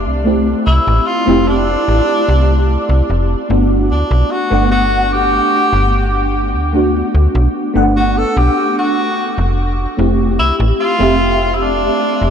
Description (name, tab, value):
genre	vaporwave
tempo	74 BPM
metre	4/4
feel	straight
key	G major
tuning	A4 = 440 Hz
part	mellow FM electric piano	accompaniment	0.0-12.3 s	A3 to F#5	-16 LUFS	equal	phaser, ensemble chorus, ping-pong delay
part	slap-like FM bass	bass	0.0-12.3 s	F1 to D2	-15 LUFS	equal	tube saturation
part	clear tenor saxophone	melody	0.7-12.3 s	D4 to A4	-17 LUFS	equal	tape echo
room	moderate huge ambient reverb, RT60 7.2 s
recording	dreamy mix soaked in reverb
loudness	-11 LUFS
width	side -8 dB against mid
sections	0.0-12.3 A section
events	none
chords	0.0 Fmaj7; 3.5 Gmaj9; 9.6 Fmaj7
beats	| 0.26 1.07 1.88 2.69 | 3.50 4.31 5.12 5.93 | 6.75 7.56 8.37 9.18 | 9.99 10.80 11.61